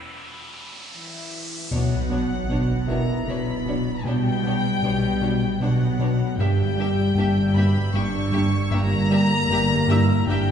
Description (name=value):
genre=cinematic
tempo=77 BPM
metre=3/4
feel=straight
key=B harmonic minor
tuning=A4 = 441 Hz
part: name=riser and sub drop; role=sound effects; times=0.0-4.1 s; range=none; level=-32 LUFS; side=equal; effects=none
part: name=felt-muted upright piano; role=texture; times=0.0-10.5 s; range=Db4 to E6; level=-37 LUFS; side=left 1 dB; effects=none
part: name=warm chamber violin section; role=texture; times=0.0-1.3, 6.4-10.5 s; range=D5 to G6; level=-38 LUFS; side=left 4 dB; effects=none
part: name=warm chamber violin section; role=melody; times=0.9-10.5 s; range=E5 to C#6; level=-29 LUFS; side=left 3 dB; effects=none
part: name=mellow French horn section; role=sustained chords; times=0.9-10.5 s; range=B2 to A#4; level=-27 LUFS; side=left 3 dB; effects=none
part: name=warm chamber violin section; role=second line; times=1.7-10.4 s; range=D4 to E5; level=-35 LUFS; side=left 1 dB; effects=none
part: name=dark chamber viola section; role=accompaniment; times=1.7-10.4 s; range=Bb3 to D4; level=-34 LUFS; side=equal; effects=none
part: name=fat analog bass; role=riff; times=1.7-10.5 s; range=G2 to B3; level=-24 LUFS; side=left 1 dB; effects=none
part: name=warm chamber cello section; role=bass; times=1.7-10.5 s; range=G2 to B2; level=-29 LUFS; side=right 4 dB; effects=none
part: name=warm chamber double bass section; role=bass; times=1.7-10.5 s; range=G1 to B1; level=-26 LUFS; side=right 3 dB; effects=none
room=wet scoring stage reverb, RT60 1.6 s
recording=heard from further back in the room, nothing above 10.6 kHz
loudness=-19 LUFS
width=side -8 dB against mid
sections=0.0-1.7 A section; 1.7-10.5 B section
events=break 0.0-1.7; riser 0.0-1.7; impact 1.7-4.1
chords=0.0 E5; 1.7 Bmadd9; 6.4 Gm6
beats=0.16 0.94 | 1.72 2.50 3.28 | 4.06 4.84 5.62 | 6.40 7.17 7.96 | 8.73 9.51 10.29